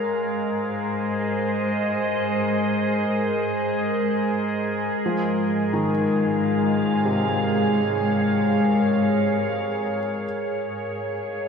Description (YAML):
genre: ambient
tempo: free time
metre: none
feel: none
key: Ab major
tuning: A4 = 440 Hz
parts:
  - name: evolving wavetable pad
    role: sustained chords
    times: 0.0-11.5 s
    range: Ab3 to F5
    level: -22 LUFS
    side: equal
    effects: chorus, built-in reverb, shimmer reverb
  - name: felt-muted upright piano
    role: arpeggios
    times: 0.0-10.3 s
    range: C3 to F4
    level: -29 LUFS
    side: equal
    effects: tape echo, shimmer reverb
  - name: warm symphonic cello section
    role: bass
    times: 0.0-11.5 s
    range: Ab2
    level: -31 LUFS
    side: equal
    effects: none
room: wet concert hall reverb, RT60 2.3 s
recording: cassette tape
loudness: -21 LUFS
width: side -6 dB against mid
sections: 0.0-10.2 A section; 10.2-11.5 B section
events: fade-in on cello section 0.0-10.2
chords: 0.0 Abadd9; 4.9 Bbm/Ab; 10.2 Absus4